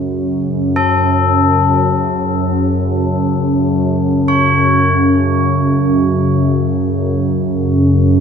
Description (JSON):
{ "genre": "world meditative, free-time meditation music", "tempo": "free time", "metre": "none", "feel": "none", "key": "unclear", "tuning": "A4 = 440 Hz", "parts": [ { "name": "deep dark ambient pad", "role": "drone", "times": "0.0-8.2 s", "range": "F#2 to C#3", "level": "-13 LUFS", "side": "equal", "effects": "chorus, built-in reverb" }, { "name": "tubular bells", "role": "texture", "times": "0.0-8.2 s", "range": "A4 to C#5", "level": "-18 LUFS", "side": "left 3 dB", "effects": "none" } ], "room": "wet lush hall reverb, RT60 2.2 s", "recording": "small room ambience", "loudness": "-12 LUFS", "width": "side -7 dB against mid", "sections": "0.1-8.2 A section", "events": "none", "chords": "none" }